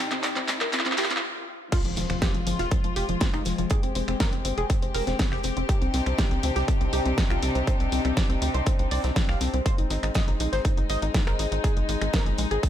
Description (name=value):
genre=progressive house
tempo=121 BPM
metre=4/4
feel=straight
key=F dorian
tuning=A4 = 441 Hz
part: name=dark studio string section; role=sustained chords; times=0.0-12.7 s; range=C3 to G4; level=-32 LUFS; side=left 2 dB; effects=sidechain pumping
part: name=tight sequenced synth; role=arpeggios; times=0.0-12.7 s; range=F3 to F5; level=-30 LUFS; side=left 2 dB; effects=chorus, sidechain pumping, ping-pong delay
part: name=tight sequencer bass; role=bass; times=0.0-12.6 s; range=F1 to D2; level=-29 LUFS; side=equal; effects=sidechain pumping
part: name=riser and impact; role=sound effects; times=0.0-3.7 s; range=none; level=-36 LUFS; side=equal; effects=none
part: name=big-room dance drum kit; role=drums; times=0.1-12.7 s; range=crash cymbal, finger snaps, handclaps, hi-hat, snare drum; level=-30 LUFS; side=equal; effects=none
part: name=warm soul drum kit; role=drums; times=0.2-12.7 s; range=hi-hat, snare drum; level=-42 LUFS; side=right 4 dB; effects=sidechain pumping on hats, high-pass filter on hats, high-pass filter on snare, high-pass filter on room
part: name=electronic kick drum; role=drums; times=1.7-12.7 s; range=none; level=-24 LUFS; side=equal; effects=none
room=small room ambience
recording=high-pass filter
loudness=-23 LUFS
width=side -11 dB against mid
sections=0.0-1.7 A section; 1.7-12.7 B section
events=build-up 0.0-1.7; drum fill 0.0-1.2; riser 0.0-1.2; filter sweep on synth arpeggio sound 0.0-1.7; stop 1.2-1.7; drop 1.7-12.7; impact 1.7-3.7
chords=0.0 Cmadd9; 1.7 Fm; 5.7 Cmadd9; 9.7 Ab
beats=0.23 0.73 1.23 | 1.72 2.22 2.71 3.21 | 3.71 4.20 4.70 5.19 | 5.69 6.18 6.68 7.18 | 7.67 8.17 8.66 9.16 | 9.66 10.15 10.65 11.14 | 11.64 12.14 12.63